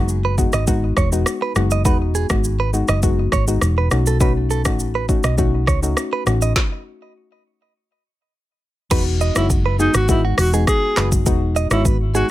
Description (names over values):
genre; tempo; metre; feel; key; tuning
afrobeats; 102 BPM; 4/4; straight; E major; A4 = 441 Hz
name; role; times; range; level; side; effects
soft round pluck; accompaniment; 0.0-12.3 s; G#3 to F#4; -23 LUFS; left 4 dB; chorus
hollow-body short-scale fingered electric bass; bass; 0.0-12.2 s; E1 to C#2; -19 LUFS; equal; none
afro-pop drum kit; drums; 0.1-12.3 s; crash cymbal, handclaps, hi-hat, kick drum, rim click, shaker, snare drum; -20 LUFS; equal; none
direct-recorded clean electric guitar; riff; 0.2-12.3 s; F#4 to D#5; -25 LUFS; right 7 dB; ping-pong delay
breathy alto saxophone; melody; 9.4-12.3 s; D#4 to G#4; -21 LUFS; equal; none
room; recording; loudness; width
little or no reverb; none; -16 LUFS; side -15 dB against mid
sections
0.0-8.9 A section; 8.9-12.3 B section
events
stop 6.6-8.9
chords
0.0 Emaj7; 3.9 B7; 8.9 Emaj7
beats
0.09 0.68 1.26 | 1.85 2.44 3.03 3.62 | 4.20 4.79 5.38 5.97 | 6.56 7.14 7.73 8.32 | 8.91 9.50 10.09 10.68 | 11.26 11.85